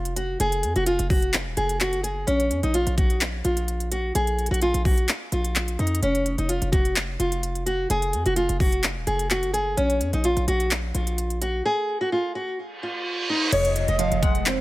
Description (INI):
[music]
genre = hip hop, trap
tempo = 128 BPM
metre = 4/4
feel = half-time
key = unclear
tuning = A4 = 444 Hz
[part]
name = nylon-string guitar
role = melody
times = 0.0-14.4 s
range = Db4 to Gb5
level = -25 LUFS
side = equal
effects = low-pass filter, digital delay
[part]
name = hard-hitting 808-style bass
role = bass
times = 0.0-14.6 s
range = Eb1 to F2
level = -26 LUFS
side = equal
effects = none
[part]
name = impact, reverse cymbal and downlifter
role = sound effects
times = 0.0-0.4, 12.8-14.6 s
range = none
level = -29 LUFS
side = right 3 dB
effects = none
[part]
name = trap drum kit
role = drums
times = 0.1-14.6 s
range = crash cymbal, handclaps, hi-hat, kick drum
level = -25 LUFS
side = equal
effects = none
[part]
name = warm velvety synth lead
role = second line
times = 13.5-14.6 s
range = C5 to Eb5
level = -27 LUFS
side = right 2 dB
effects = chorus, digital delay
[part]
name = glassy wavetable pluck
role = accompaniment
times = 13.5-14.6 s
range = F2 to C4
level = -27 LUFS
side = equal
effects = chorus, low-pass filter
[sound]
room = little or no reverb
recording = none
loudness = -21 LUFS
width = side -18 dB against mid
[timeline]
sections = 0.0-13.5 A section; 13.5-14.6 B section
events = impact 0.0-0.4; reverse cymbal 12.8-13.5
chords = 0.0 Ebmadd9 (rootless); 2.3 Bb5; 6.0 Ebmadd9 (rootless); 9.8 Bb5; 13.5 Fm7